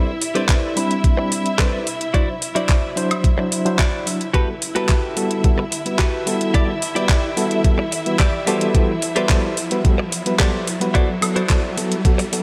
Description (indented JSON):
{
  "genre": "nu-disco, nu disco",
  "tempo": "109 BPM",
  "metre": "4/4",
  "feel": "straight",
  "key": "unclear",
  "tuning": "A4 = 440 Hz",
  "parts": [
    { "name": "reed electric piano", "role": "accompaniment", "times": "0.0-12.4 s", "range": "F#3 to B5", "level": "-26 LUFS", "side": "equal", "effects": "fast tremolo, sidechain pumping, tape echo" },
    { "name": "warm symphonic string section", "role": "sustained chords", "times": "0.0-12.4 s", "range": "E4 to E5", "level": "-29 LUFS", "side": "equal", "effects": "sidechain pumping" },
    { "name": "direct-recorded clean electric guitar", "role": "riff", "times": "0.0-12.4 s", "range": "E4 to D5", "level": "-28 LUFS", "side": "equal", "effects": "analog chorus, low-pass filter, tape echo" },
    { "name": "riser", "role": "sound effects", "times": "0.2-12.4 s", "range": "none", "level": "-34 LUFS", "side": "equal", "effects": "none" },
    { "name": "pop drum kit", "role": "drums", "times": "0.2-12.4 s", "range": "handclaps, hi-hat, woodblock", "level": "-26 LUFS", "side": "equal", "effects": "none" },
    { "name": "electronic kick drum", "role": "drums", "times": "0.5-12.2 s", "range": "none", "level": "-19 LUFS", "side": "equal", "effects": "none" }
  ],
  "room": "light reverb",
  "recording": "none",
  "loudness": "-19 LUFS",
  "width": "mono",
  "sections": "0.0-12.4 A section",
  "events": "build-up 0.0-12.4; riser 0.3-12.4",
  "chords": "0.0 Am11; 2.1 D9; 4.3 Gmaj9; 6.5 Em7; 8.5 Am11; 10.9 D9",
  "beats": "0.49 1.04 1.59 | 2.14 2.69 3.24 3.79 | 4.34 4.89 5.45 6.00 | 6.55 7.10 7.65 8.20 | 8.75 9.30 9.85 10.40 | 10.95 11.50 12.05"
}